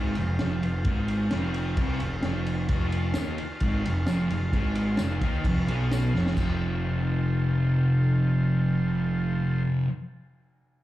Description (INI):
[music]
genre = garage rock duo or trio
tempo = 130 BPM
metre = 4/4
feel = straight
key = F mixolydian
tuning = A4 = 440 Hz
[part]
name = overdriven combo organ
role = sustained chords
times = 0.0-9.6 s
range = F4 to C6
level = -38 LUFS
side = equal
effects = none
[part]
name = fuzz guitar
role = riff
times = 0.0-9.9 s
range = F2 to Eb4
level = -26 LUFS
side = equal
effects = distortion
[part]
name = fuzz picked electric bass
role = bass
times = 0.0-9.6 s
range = F1 to Eb2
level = -28 LUFS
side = equal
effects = overdrive
[part]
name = crunchy breakbeat drum kit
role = drums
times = 0.2-6.5 s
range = crash cymbal, kick drum, ride cymbal, snare drum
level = -30 LUFS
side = equal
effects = none
[part]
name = tambourine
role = percussion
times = 3.1-6.6 s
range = none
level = -49 LUFS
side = left 2 dB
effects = none
[sound]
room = studio reverb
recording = live gig heard through the venue's PA, club reverb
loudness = -23 LUFS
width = side -15 dB against mid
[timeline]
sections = 0.0-6.4 A section; 6.4-10.1 B section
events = drum fill 6.2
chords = 0.0 F